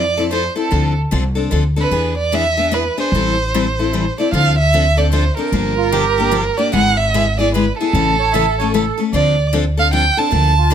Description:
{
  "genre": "acoustic string swing (jazz manouche)",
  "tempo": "150 BPM",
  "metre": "3/4",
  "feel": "swing 63% on 8ths",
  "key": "A minor, D minor from 4.3 s",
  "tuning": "A4 = 440 Hz",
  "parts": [
    { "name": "warm violin", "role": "melody", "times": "0.0-10.7 s", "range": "A4 to A5", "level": "-17 LUFS", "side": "right 4 dB", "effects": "plate reverb" },
    { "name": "picked steel-string acoustic guitar", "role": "accompaniment", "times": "0.0-10.7 s", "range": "C#3 to A4", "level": "-19 LUFS", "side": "left 6 dB", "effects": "none" },
    { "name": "upright bass", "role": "bass", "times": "0.0-10.7 s", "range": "G1 to F2", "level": "-18 LUFS", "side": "equal", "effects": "none" },
    { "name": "accordion", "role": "second line", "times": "5.8-10.7 s", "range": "F4 to E5", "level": "-21 LUFS", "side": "right 10 dB", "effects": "none" }
  ],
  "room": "light reverb",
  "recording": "close, detailed microphones",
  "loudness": "-14 LUFS",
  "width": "side -8 dB against mid",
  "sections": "0.0-4.3 A section; 4.3-10.7 B section",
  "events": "none",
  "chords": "0.0 Fmaj7; 0.7 Dm7; 1.9 E7; 3.1 Am7; 4.3 Dm7; 5.5 Gm7; 6.7 E7/G#; 7.9 A; 9.1 Dm7",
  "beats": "0.31 | 0.71 1.11 1.51 | 1.91 2.32 2.72 | 3.12 3.52 3.92 | 4.32 4.72 5.12 | 5.52 5.92 6.32 | 6.72 7.12 7.52 | 7.92 8.32 8.72 | 9.12 9.52 9.92 | 10.32 10.72"
}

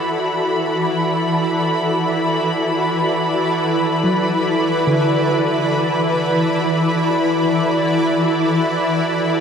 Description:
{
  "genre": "ambient",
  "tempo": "free time",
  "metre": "none",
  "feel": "none",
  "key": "unclear",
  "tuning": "A4 = 439 Hz",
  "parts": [
    { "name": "shimmering ambient pad", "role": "sustained chords", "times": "0.0-9.4 s", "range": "E3 to D5", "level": "-17 LUFS", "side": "equal", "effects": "chorus, built-in reverb" },
    { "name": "soft round pluck", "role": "arpeggios", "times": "0.0-9.4 s", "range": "D3 to A5", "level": "-27 LUFS", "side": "equal", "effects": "none" },
    { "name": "rich studio violin section", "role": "texture", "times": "0.0-9.4 s", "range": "B5", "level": "-23 LUFS", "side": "equal", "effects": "none" }
  ],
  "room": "wet cathedral reverb, RT60 6.1 s",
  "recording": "none",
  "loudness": "-16 LUFS",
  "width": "side -7 dB against mid",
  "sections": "0.0-9.4 A section",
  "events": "none",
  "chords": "0.0 D69",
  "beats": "free time"
}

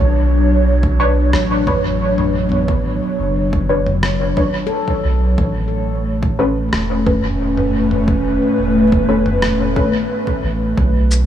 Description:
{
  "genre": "ambient dub",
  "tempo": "89 BPM",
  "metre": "4/4",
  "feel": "straight",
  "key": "B minor",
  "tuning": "A4 = 441 Hz",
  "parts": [
    { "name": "airy breathy pad", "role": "sustained chords", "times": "0.0-11.3 s", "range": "A2 to C#5", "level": "-18 LUFS", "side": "equal", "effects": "chorus" },
    { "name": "handpan", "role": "arpeggios", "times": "0.0-11.3 s", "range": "B3 to A4", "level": "-29 LUFS", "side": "left 4 dB", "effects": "tape echo" },
    { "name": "warm sub bass", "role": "bass", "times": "0.0-11.3 s", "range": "E1 to B1", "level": "-18 LUFS", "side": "right 1 dB", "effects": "none" },
    { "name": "electronic kick drum", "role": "drums", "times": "0.8-10.9 s", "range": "none", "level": "-22 LUFS", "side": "equal", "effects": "overdrive" },
    { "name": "filtered dub chord stab", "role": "stabs", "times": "1.0-9.9 s", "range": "C#4 to C#5", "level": "-22 LUFS", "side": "left 1 dB", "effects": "ensemble chorus, dub echo" },
    { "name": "lo-fi sampler-style drum kit", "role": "drums", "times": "1.3-11.2 s", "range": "rim click, shaker, toms", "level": "-24 LUFS", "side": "equal", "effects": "dub echo" }
  ],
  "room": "light reverb, digital ambience",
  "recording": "none",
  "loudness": "-14 LUFS",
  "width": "side -10 dB against mid",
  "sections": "0.0-11.3 A section",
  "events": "none",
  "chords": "0.0 Bmadd9; 5.4 Aadd9",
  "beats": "0.66 1.34 2.01 | 2.68 3.36 4.03 4.71 | 5.38 6.05 6.73 7.40 | 8.08 8.75 9.43 10.10 | 10.77"
}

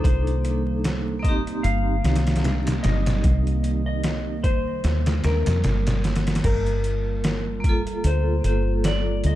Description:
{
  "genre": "trip hop",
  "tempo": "75 BPM",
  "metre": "4/4",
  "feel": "swing 56% on 16ths",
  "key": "G minor",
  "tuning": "A4 = 436 Hz",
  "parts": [
    { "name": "clean lap steel guitar", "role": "melody", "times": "0.0-9.4 s", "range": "Bb4 to F5", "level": "-30 LUFS", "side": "left 3 dB", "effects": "tape echo" },
    { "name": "vibraphone with hard mallets", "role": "accompaniment", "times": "0.0-9.4 s", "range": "Bb3 to A4", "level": "-30 LUFS", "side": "equal", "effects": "tremolo, tape echo" },
    { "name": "warbly tape-like pad", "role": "sustained chords", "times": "0.0-9.4 s", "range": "C3 to F4", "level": "-30 LUFS", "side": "right 4 dB", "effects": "chorus, built-in reverb" },
    { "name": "deep dub fingered electric bass", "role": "bass", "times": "0.0-9.4 s", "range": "G1 to F2", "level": "-23 LUFS", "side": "equal", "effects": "none" },
    { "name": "trip hop sampler-style drum kit", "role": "drums", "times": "0.0-9.4 s", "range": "crash cymbal, hi-hat, kick drum, snare drum", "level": "-24 LUFS", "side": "equal", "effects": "overdrive" }
  ],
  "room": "little or no reverb",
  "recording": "dark, warm production, vinyl crackle",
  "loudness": "-20 LUFS",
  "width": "side -14 dB against mid",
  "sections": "0.0-6.4 A section; 6.4-9.4 B section",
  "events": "filter sweep on vibraphone 0.0-6.4",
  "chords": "0.0 Cm7; 6.4 Gm7",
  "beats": "| 0.04 0.84 1.64 2.44 | 3.24 4.04 4.84 5.64 | 6.44 7.24 8.04 8.84"
}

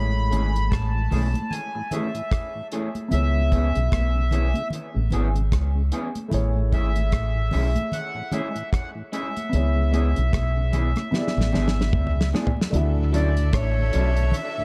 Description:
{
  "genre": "lovers rock reggae",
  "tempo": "75 BPM",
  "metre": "4/4",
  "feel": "swing 58% on 16ths",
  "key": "A major",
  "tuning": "A4 = 439 Hz",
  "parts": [
    { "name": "accordion", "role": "melody", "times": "0.0-14.6 s", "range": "C#5 to B5", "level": "-32 LUFS", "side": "equal", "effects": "tape echo" },
    { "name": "dark grand piano", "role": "accompaniment", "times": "0.0-14.6 s", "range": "G#3 to E5", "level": "-35 LUFS", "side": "equal", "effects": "dub echo" },
    { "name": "fingered electric bass", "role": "bass", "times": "0.0-14.3 s", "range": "G#1 to D2", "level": "-24 LUFS", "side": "equal", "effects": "none" },
    { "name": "mellow tonewheel organ", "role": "accompaniment", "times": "0.1-14.6 s", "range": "D2 to G#4", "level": "-39 LUFS", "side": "equal", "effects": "none" },
    { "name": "electric guitar through a small old amp", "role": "stabs", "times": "0.3-14.1 s", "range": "E3 to A4", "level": "-35 LUFS", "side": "equal", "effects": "subtle chorus, dub echo" },
    { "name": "damped 70s drum kit", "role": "drums", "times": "0.3-14.6 s", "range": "hi-hat, kick drum, rim click, snare drum, toms", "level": "-29 LUFS", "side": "equal", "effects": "none" },
    { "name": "congas", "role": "percussion", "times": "0.7-14.5 s", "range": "none", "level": "-34 LUFS", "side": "equal", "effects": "none" },
    { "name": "warm studio string section", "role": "second line", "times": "12.7-14.6 s", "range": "D4 to E5", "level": "-35 LUFS", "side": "equal", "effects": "dub echo" }
  ],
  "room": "small room ambience",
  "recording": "dark, warm production",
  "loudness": "-23 LUFS",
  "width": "mono",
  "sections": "0.0-12.7 A section; 12.7-14.6 B section",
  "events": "drum fill 11.1-12.7",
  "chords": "0.0 Amaj7; 9.5 C#m7; 11.1 E7; 12.7 Dmaj9",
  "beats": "0.72 1.52 2.32 | 3.12 3.92 4.72 5.52 | 6.32 7.12 7.93 8.73 | 9.53 10.33 11.13 11.93 | 12.73 13.53 14.33"
}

